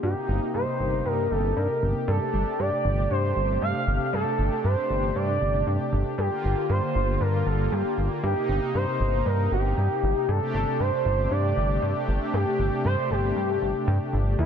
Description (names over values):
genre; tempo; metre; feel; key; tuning
synthwave; 117 BPM; 4/4; straight; unclear; A4 = 440 Hz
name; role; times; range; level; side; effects
expressive portamento lead; melody; 0.0-14.5 s; F4 to F5; -27 LUFS; equal; wide subtle chorus, digital delay
brassy analog pad; sustained chords; 0.0-14.5 s; C3 to G4; -29 LUFS; equal; chorus, tremolo
chorused synth bass; bass; 0.0-14.5 s; G1 to G2; -25 LUFS; equal; none
room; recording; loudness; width
light reverb; dense, heavily limited modern master; -22 LUFS; side -8 dB against mid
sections
0.0-14.4 A section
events
none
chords
0.0 Cm7/G; 2.1 D7sus4/G; 6.2 Gm7; 8.2 Cm7/G; 10.3 D7sus4/G